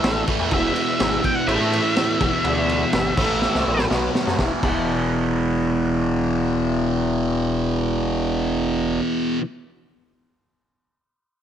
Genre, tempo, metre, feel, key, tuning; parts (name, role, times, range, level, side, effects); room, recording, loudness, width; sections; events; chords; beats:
psychedelic rock; 124 BPM; 4/4; straight; A4 = 440 Hz
octave-fuzz lead guitar; melody; 0.0-3.9 s; E5 to G5; -24 LUFS; left 1 dB; distortion, tape echo
fuzz guitar; riff; 0.0-9.4 s; E2 to B3; -22 LUFS; equal; distortion, phaser
gritty driven synth bass; bass; 0.0-9.0 s; E1 to A2; -24 LUFS; equal; distortion
crunchy breakbeat drum kit; drums; 0.0-4.8 s; crash cymbal, kick drum, ride cymbal, snare drum; -24 LUFS; equal
light reverb, small room ambience; -18 LUFS; side -9 dB against mid
0.0-4.4 A section; 4.4-8.2 B section
drum fill 3.4-4.4
0.0 A5; 0.5 E5; 1.5 A5; 2.2 Em7; 3.2 Am; 3.9 B5; 4.4 E5
0.04 | 0.52 1.00 1.49 1.97 | 2.45 2.93 3.42 3.90 | 4.38 4.86 5.35 5.83 | 6.31 6.79 7.28 7.76